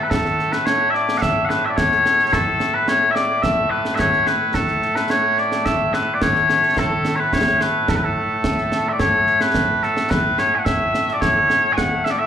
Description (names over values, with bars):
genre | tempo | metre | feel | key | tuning
scottish traditional, Scottish pipe music | 108 BPM | 4/4 | straight | A major | A4 = 438 Hz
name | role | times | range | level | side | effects
mellow small bagpipes | melody | 0.0-12.3 s | A2 to G#5 | -17 LUFS | left 1 dB | plate reverb, slapback echo, tape echo
concert snare drum and concert bass drum | drums | 0.1-12.2 s | none | -23 LUFS | right 1 dB | slapback echo
room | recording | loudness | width
moderate club reverb, RT60 0.5 s | live gig heard through the venue's PA, club reverb | -16 LUFS | side -9 dB against mid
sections
0.1-9.0 A section; 9.0-12.3 B section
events
none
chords
none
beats
| 0.10 0.66 1.22 1.77 | 2.33 2.88 3.44 3.99 | 4.55 5.11 5.66 6.22 | 6.77 7.33 7.88 8.44 | 8.99 9.55 10.11 10.66 | 11.22 11.77